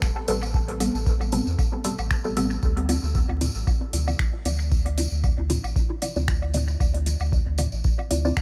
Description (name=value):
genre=dub techno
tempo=115 BPM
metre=4/4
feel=swing 55% on 16ths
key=unclear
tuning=A4 = 440 Hz
part: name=filtered dub chord stab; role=stabs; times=0.0-8.4 s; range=G3 to D5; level=-31 LUFS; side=equal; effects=phaser, sidechain pumping, dub echo
part: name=warm sub bass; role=bass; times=0.0-8.4 s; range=E1 to E2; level=-28 LUFS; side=equal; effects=tube saturation, sidechain pumping
part: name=booming analog drum machine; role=drums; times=0.0-8.4 s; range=finger snaps, hi-hat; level=-34 LUFS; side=equal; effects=dub echo
part: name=electronic kick drum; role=drums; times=0.0-8.4 s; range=none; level=-26 LUFS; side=equal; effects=none
part: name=electronic woodblock and toms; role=percussion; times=0.0-8.4 s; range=none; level=-38 LUFS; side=equal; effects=overdrive, sidechain pumping on perc, sidechain pumping on toms, dub echo
part: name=tambourine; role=percussion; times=0.0-8.4 s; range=none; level=-39 LUFS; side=equal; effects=none
room=little or no reverb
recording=vinyl crackle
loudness=-24 LUFS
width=mono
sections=0.0-8.4 A section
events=filter sweep on synth stab 0.0-8.4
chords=0.0 Am9; 2.6 Dm9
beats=0.02 | 0.54 1.06 1.59 2.11 | 2.63 3.15 3.67 4.20 | 4.72 5.24 5.76 6.28 | 6.80 7.33 7.85 8.37